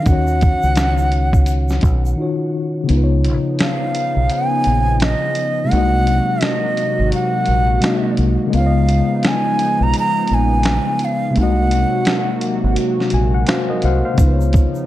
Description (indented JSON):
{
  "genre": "lo-fi hip hop",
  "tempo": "85 BPM",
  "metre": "4/4",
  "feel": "swing 60% on 16ths",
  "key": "G# dorian",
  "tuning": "A4 = 436 Hz",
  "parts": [
    { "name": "breathy jazz flute", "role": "melody", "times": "0.0-12.8 s", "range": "D#5 to A#5", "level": "-20 LUFS", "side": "right 1 dB", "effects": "none" },
    { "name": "tine electric piano", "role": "accompaniment", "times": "0.0-14.9 s", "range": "B#2 to G#5", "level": "-20 LUFS", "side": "left 2 dB", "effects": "medium stereo tremolo" },
    { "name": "deep dub fingered electric bass", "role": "bass", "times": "0.1-14.7 s", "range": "G#1 to D#2", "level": "-17 LUFS", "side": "equal", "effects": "none" },
    { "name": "dusty soul sampler-style drum kit", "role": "drums", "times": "0.1-14.7 s", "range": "finger snaps, hi-hat, kick drum, snare drum", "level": "-19 LUFS", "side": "equal", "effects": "none" },
    { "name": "egg shaker", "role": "percussion", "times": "0.1-2.2, 14.2-14.9 s", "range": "none", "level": "-41 LUFS", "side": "right 8 dB", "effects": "none" },
    { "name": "lush unison pad", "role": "sustained chords", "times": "2.9-14.9 s", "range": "B#2 to F#4", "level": "-24 LUFS", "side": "right 1 dB", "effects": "chorus" }
  ],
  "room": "light reverb, digital ambience",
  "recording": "none",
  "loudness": "-14 LUFS",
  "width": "side -14 dB against mid",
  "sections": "0.0-2.9 A section; 2.9-14.9 B section",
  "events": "break 2.2-2.9; kick muted 2.9-14.2",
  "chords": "0.1 D#m7; 2.9 C#9; 5.7 G#9; 8.5 C#9; 11.4 G#9; 14.2 C#9"
}